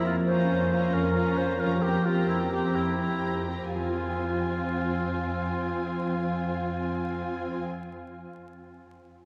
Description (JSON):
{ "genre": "classical, dramatic, fast romantic movement for symphony orchestra", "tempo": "119-136 BPM", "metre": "4/4", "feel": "straight", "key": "F minor", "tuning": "A4 = 440 Hz", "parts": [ { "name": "rich studio violin section", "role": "melody", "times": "0.0-7.6 s", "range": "Ab5 to Bb5", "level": "-44 LUFS", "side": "equal", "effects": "none" }, { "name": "mellow oboe", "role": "second line", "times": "0.0-7.6 s", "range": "E4 to C5", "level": "-34 LUFS", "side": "equal", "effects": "none" }, { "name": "rich symphonic violin section", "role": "second line", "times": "0.0-7.6 s", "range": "F4 to G4", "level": "-38 LUFS", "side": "equal", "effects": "none" }, { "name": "rich studio viola section", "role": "accompaniment", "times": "0.0-7.6 s", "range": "C4 to Db4", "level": "-37 LUFS", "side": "equal", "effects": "none" }, { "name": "concert harp", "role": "arpeggios", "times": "0.0-8.0 s", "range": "F3 to Ab5", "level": "-34 LUFS", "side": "equal", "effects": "none" }, { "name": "rich symphonic cello section", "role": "bass", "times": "0.1-7.6 s", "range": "F2", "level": "-34 LUFS", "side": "equal", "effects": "none" } ], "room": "wet cathedral reverb, RT60 5.2 s", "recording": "recorded in a church or concert hall, vinyl crackle", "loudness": "-28 LUFS", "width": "mono", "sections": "0.0-3.7 A section; 3.7-7.6 B section", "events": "slowing down 0.0-3.7", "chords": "0.0 Bbm/F; 1.8 C7/F; 3.7 Fm", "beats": "| 0.05 0.49 0.94 1.38 | 1.83 2.29 2.76 3.24 | 3.73 4.22 4.70 5.18 | 5.66 6.15 6.63 7.12" }